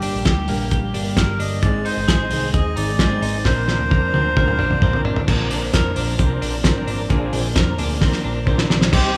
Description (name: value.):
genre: jangly indie pop.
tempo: 131 BPM.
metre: 4/4.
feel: straight.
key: unclear.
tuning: A4 = 440 Hz.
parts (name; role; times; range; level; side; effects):
melodica; melody; 0.0-5.0, 8.9-9.2 s; G4 to Eb5; -27 LUFS; equal; none.
fingerpicked steel-string acoustic guitar; accompaniment; 0.0-9.2 s; G2 to Bb4; -31 LUFS; equal; none.
twelve-string electric guitar; arpeggios; 0.0-9.2 s; G2 to Bb4; -29 LUFS; equal; spring reverb.
vintage muted picked electric bass; bass; 0.0-9.1 s; G1 to F2; -27 LUFS; equal; none.
cloth-damped thuddy drum kit; drums; 0.0-9.0 s; crash cymbal, hi-hat, kick drum, snare drum, toms; -22 LUFS; equal; none.
overdriven combo organ; accompaniment; 1.6-9.2 s; C4 to C5; -31 LUFS; equal; none.
phased analog pad; sustained chords; 8.9-9.2 s; none; barely audible; none; none.
room: moderate recital hall reverb, RT60 1.4 s.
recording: recorded in a church or concert hall.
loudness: -19 LUFS.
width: mono.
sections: 0.0-5.3 A section; 5.3-8.9 B section.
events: drum fill 3.5-5.3, 8.0-8.9.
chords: 0.0 Gm; 1.6 Ab; 3.5 Bbadd9.